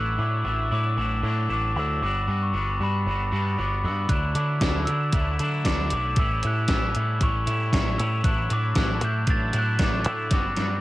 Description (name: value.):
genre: indie rock.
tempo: 116 BPM.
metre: 4/4.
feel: straight.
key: D major.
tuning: A4 = 440 Hz.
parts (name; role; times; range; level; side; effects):
glockenspiel with rubber mallets; melody; 0.0-10.8 s; B5 to A6; -28 LUFS; left 1 dB; cassette tape.
twangy electric guitar; riff; 0.0-10.8 s; A2 to F#4; -30 LUFS; equal; double-tracked left and right, cassette tape.
deep dub picked electric bass; bass; 0.0-10.8 s; G1 to D3; -26 LUFS; equal; none.
gated 80s digital drum machine; drums; 4.1-10.7 s; hi-hat, kick drum, snare drum; -24 LUFS; equal; gated reverb, gated reverb snare, overdrive, cassette tape.
room: light reverb.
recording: home recording on cassette.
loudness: -22 LUFS.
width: side -16 dB against mid.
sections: 0.0-10.8 A section.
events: drum fill 10.3-10.8.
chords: 0.0 Dadd9/A; 2.0 Gmaj7; 4.1 Dadd9; 6.2 A7; 8.2 Dadd9/A.